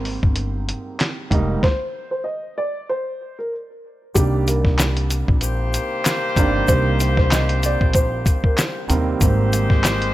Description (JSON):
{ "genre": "hip hop, boom-bap hip-hop", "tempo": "95 BPM", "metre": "4/4", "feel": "swing 56% on 16ths", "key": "C minor", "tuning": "A4 = 438 Hz", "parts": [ { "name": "dark upright piano", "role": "melody", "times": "0.0-8.6 s", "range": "G4 to Eb5", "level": "-25 LUFS", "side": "equal", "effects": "high-pass filter, low-pass filter, tape echo" }, { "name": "dark concert grand piano", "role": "accompaniment", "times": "0.0-10.1 s", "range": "C2 to Eb4", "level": "-25 LUFS", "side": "right 5 dB", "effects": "cassette tape, high-pass filter, low-pass filter" }, { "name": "upright bass", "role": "bass", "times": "0.0-10.1 s", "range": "F1 to Eb2", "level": "-21 LUFS", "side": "equal", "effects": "none" }, { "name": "lo-fi sampler-style drum kit", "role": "drums", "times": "0.1-10.1 s", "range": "handclaps, hi-hat, kick drum, snare drum", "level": "-19 LUFS", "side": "equal", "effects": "none" }, { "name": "egg shaker", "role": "percussion", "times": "4.2-10.0 s", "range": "none", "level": "-30 LUFS", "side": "left 6 dB", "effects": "none" }, { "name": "warm horn section", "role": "stabs", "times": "5.4-10.1 s", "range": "Ab3 to C5", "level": "-24 LUFS", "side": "left 2 dB", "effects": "high-pass filter, low-pass filter, tape echo" } ], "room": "small room ambience", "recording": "none", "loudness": "-17 LUFS", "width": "side -15 dB against mid", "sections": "0.0-4.2 A section; 4.2-10.1 B section", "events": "stop 1.6-4.2", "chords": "0.0 Abmaj7; 1.6 N.C.; 4.2 Cm7; 9.2 Abmaj7", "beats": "0.37 1.00 | 1.63 2.26 2.89 3.52 | 4.16 4.79 5.42 6.05 | 6.68 7.32 7.95 8.58 | 9.21 9.84" }